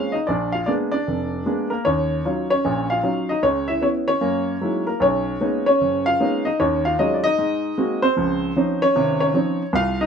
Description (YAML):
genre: solo jazz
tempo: 152 BPM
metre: 4/4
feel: swing 64% on 8ths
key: unclear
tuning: A4 = 440 Hz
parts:
  - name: warm upright piano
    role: solo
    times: 0.0-10.1 s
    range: F1 to F5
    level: -18 LUFS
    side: equal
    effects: none
room: moderate studio reverb, RT60 0.6 s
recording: band playing live in one room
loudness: -18 LUFS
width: side -7 dB against mid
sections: 0.0-10.1 A section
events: none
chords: 0.3 Bb7b9; 1.9 Ebm9; 3.4 Dbm7; 4.2 Gb13; 5.0 Bmaj13; 6.6 Ebm11; 7.4 Ab9; 8.2 Dbmaj9